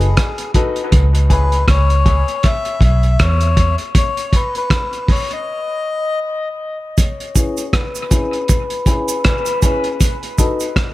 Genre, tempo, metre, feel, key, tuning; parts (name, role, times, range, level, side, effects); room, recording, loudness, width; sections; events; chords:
dub reggae; 79 BPM; 4/4; swing 57% on 16ths; C# minor; A4 = 440 Hz
melodica; melody; 0.0-9.6 s; G#4 to E5; -22 LUFS; left 3 dB; low-pass filter, dub echo
clear upright piano; stabs; 0.0-10.6 s; C#4 to B4; -24 LUFS; left 3 dB; high-pass filter, low-pass filter, dub echo
vintage muted fingered electric bass; bass; 0.0-3.7 s; F#1 to E2; -13 LUFS; equal
cloth-damped thuddy drum kit; drums; 0.0-10.9 s; hi-hat, kick drum, rim click; -16 LUFS; equal
cabasa; percussion; 7.0-10.8 s; -26 LUFS; right 10 dB
light reverb, studio reverb; echo-heavy mix; -14 LUFS; side -17 dB against mid
0.0-7.0 A section; 7.0-10.9 B section
break 0.0-7.0; filter sweep on upright piano 0.0-7.0; filter sweep 7.0-10.9
0.0 B7; 0.9 C#m7; 3.9 B7; 7.0 C#m7; 10.0 B7